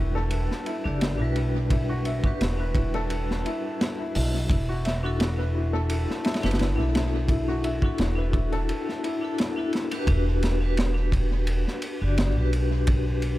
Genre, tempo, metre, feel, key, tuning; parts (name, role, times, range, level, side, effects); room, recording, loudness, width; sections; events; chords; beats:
trip hop; 86 BPM; 4/4; swing 54% on 16ths; E minor; A4 = 439 Hz
vibraphone with hard mallets; accompaniment; 0.0-13.4 s; G3 to D5; -30 LUFS; left 2 dB; tremolo, tape echo
felt-muted upright piano; arpeggios; 0.0-10.1 s; E4 to E5; -33 LUFS; left 1 dB; tape echo
upright bass; bass; 0.0-13.4 s; E1 to B1; -25 LUFS; equal
crunchy breakbeat drum kit; drums; 0.3-13.4 s; hi-hat, kick drum, ride cymbal, snare drum; -28 LUFS; equal; tape echo
small room ambience; echo-heavy mix; -23 LUFS; side -16 dB against mid
0.0-10.1 A section; 10.1-13.4 B section
break 8.7-10.1
0.0 Em7
0.32 1.01 | 1.71 2.41 3.10 3.80 | 4.50 5.20 5.90 6.59 | 7.29 7.99 8.69 9.38 | 10.08 10.78 11.48 12.18 | 12.87